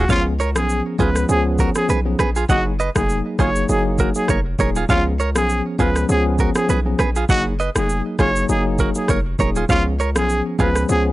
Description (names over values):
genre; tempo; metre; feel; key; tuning
afrobeats; 100 BPM; 4/4; swing 55% on 16ths; Db mixolydian; A4 = 440 Hz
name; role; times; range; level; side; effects
warm trumpet; melody; 0.0-11.0 s; F4 to Db5; -22 LUFS; equal; none
tine electric piano; accompaniment; 0.0-11.1 s; F3 to Ab4; -22 LUFS; left 1 dB; medium stereo tremolo
direct-recorded clean electric guitar; riff; 0.0-10.7 s; F4 to Gb5; -23 LUFS; right 5 dB; tape echo
hard-hitting 808-style bass; bass; 0.0-11.1 s; Eb1 to Db2; -21 LUFS; equal; none
afro-pop drum kit; drums; 0.1-11.0 s; kick drum, rim click, shaker; -22 LUFS; equal; overdrive
room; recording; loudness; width
light reverb; dry, gritty hardware recording, nothing above 11.0 kHz; -16 LUFS; side -17 dB against mid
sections
0.1-11.1 A section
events
none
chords
0.1 Db7; 2.5 Gb69; 4.9 Db7; 7.3 Gb69; 9.7 Db7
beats
| 0.09 0.69 1.29 1.89 | 2.49 3.09 3.69 4.29 | 4.89 5.49 6.09 6.69 | 7.29 7.89 8.49 9.09 | 9.69 10.29 10.89